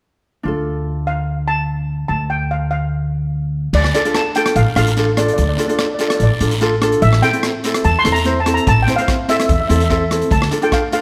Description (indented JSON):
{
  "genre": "calypso",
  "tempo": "146 BPM",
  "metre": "4/4",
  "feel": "straight",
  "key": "D minor",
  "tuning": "A4 = 440 Hz",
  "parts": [
    { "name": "ukulele", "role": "accompaniment", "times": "0.4-11.0 s", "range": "C4 to C5", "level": "-21 LUFS", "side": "equal", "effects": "none" },
    { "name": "upright bass", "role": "bass", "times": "0.5-10.5 s", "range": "A1 to E2", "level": "-20 LUFS", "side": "equal", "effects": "none" },
    { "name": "steel pan", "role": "melody", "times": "1.1-11.0 s", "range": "D5 to C6", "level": "-22 LUFS", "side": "equal", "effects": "none" },
    { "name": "vintage drum kit", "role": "drums", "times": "3.7-11.0 s", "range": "crash cymbal, hi-hat, kick drum, rim click", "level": "-25 LUFS", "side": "equal", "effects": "none" },
    { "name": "guiro", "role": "percussion", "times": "3.7-11.0 s", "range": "none", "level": "-32 LUFS", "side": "equal", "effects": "none" }
  ],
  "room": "moderate scoring stage reverb, RT60 1.6 s",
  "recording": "none",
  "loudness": "-17 LUFS",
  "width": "mono",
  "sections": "0.4-3.7 A section; 3.7-11.0 B section",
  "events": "none",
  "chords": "0.4 Dm; 7.0 Am; 10.3 Dm",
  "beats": "| 0.45 0.86 1.27 1.68 | 2.09 2.50 2.92 3.33 | 3.74 4.15 4.56 4.97 | 5.38 5.79 6.20 6.61 | 7.02 7.43 7.84 8.26 | 8.67 9.08 9.49 9.90 | 10.31 10.72"
}